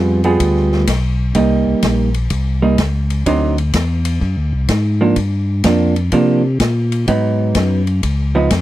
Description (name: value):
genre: soul jazz organ trio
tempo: 126 BPM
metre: 4/4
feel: swing 67% on 8ths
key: unclear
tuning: A4 = 444 Hz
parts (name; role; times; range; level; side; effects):
- vintage hollow-body jazz guitar; accompaniment; 0.0-8.5 s; D3 to Ab4; -15 LUFS; right 3 dB; none
- tonewheel organ; bass; 0.0-8.6 s; Bb1 to C3; -16 LUFS; left 1 dB; slow rotary speaker
- swinging big-band drum kit; drums; 0.2-8.6 s; hi-hat, kick drum, ride cymbal, snare drum; -22 LUFS; left 1 dB; none
room: little or no reverb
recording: dry, close 1970s-style studio recording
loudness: -13 LUFS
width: side -15 dB against mid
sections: 0.0-8.6 A section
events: none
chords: 0.0 G7b9; 1.3 Cm7; 3.3 D7b9; 5.2 Gm7; 7.1 Abm7; 8.0 Db9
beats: 0.39 0.87 | 1.35 1.82 2.30 2.78 | 3.26 3.73 4.21 4.69 | 5.17 5.64 6.12 6.60 | 7.08 7.55 8.03 8.51